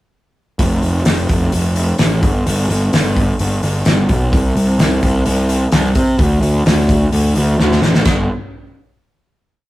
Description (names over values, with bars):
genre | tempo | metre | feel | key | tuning
quiet-loud alternative rock | 129 BPM | 4/4 | straight | unclear | A4 = 440 Hz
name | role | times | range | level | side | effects
fuzz picked electric bass | bass | 0.6-8.3 s | F1 to C3 | -14 LUFS | equal | overdrive
loose indie drum kit | drums | 0.6-8.2 s | hi-hat, kick drum, ride cymbal, snare drum | -16 LUFS | equal | none
room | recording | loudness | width
light reverb | rough rehearsal-room recording | -12 LUFS | side -16 dB against mid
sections
0.6-8.1 pre-chorus; 8.1-9.7 final note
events
drum fill 7.6-8.1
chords
none